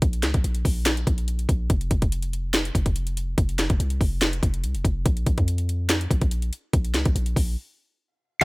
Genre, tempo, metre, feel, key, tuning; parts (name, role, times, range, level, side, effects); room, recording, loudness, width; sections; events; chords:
hip hop, trap; 143 BPM; 4/4; half-time; A4 = 441 Hz
warm 808-style bass; bass; 0.0-8.4 s; F1 to F2; -25 LUFS; equal
trap drum kit; drums; 0.0-8.4 s; crash cymbal, hi-hat, kick drum, snare drum; -22 LUFS; equal
little or no reverb; -21 LUFS; side -24 dB against mid
0.0-8.4 A section
break 7.6-8.4